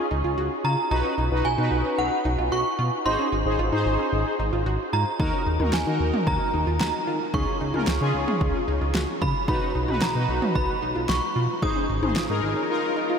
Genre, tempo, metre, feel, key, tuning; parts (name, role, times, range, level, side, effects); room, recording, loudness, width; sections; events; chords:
synth-pop; 112 BPM; 4/4; straight; A4 = 440 Hz
synth chime; melody; 0.0-13.2 s; F#5 to Eb6; -28 LUFS; right 1 dB; ensemble chorus, ping-pong delay
analog synth brass; accompaniment; 0.0-13.2 s; Db4 to C5; -27 LUFS; left 1 dB; chorus
analog pluck; arpeggios; 0.1-13.2 s; Db4 to Gb4; -31 LUFS; right 2 dB; chorus, ping-pong delay
chorused synth bass; bass; 0.1-12.5 s; Ab1 to Eb3; -26 LUFS; equal
deep house drum kit; drums; 5.2-12.3 s; kick drum, snare drum, toms; -28 LUFS; equal; overdrive
wet huge ambient reverb, RT60 8.6 s; dreamy mix soaked in reverb; -22 LUFS; side -6 dB against mid
0.0-13.2 A section
0.0 Db; 0.9 B; 3.1 Ab; 5.2 Ebm; 7.3 Db; 9.5 B; 11.6 Ab